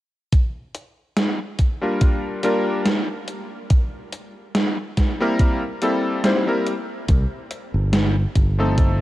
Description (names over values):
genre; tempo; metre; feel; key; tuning
vaporwave; 71 BPM; 4/4; swing 55% on 16ths; G minor; A4 = 440 Hz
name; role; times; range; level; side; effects
electronic kick drum; drums; 0.3-9.0 s; none; -17 LUFS; equal; overdrive, studio reverb
gated 80s digital drum machine; drums; 0.3-9.0 s; hi-hat, snare drum; -23 LUFS; right 1 dB; gated reverb, gated reverb snare, overdrive, studio reverb
bright electric grand piano; accompaniment; 1.8-9.0 s; F3 to C5; -22 LUFS; left 1 dB; lush chorus, analog delay
fingered electric bass; bass; 7.1-9.0 s; G1 to C2; -20 LUFS; equal; none
room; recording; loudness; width
digital ambience; cassette tape; -18 LUFS; side -16 dB against mid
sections
0.3-9.0 A section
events
none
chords
0.3 Gm7; 3.3 C7; 7.1 F7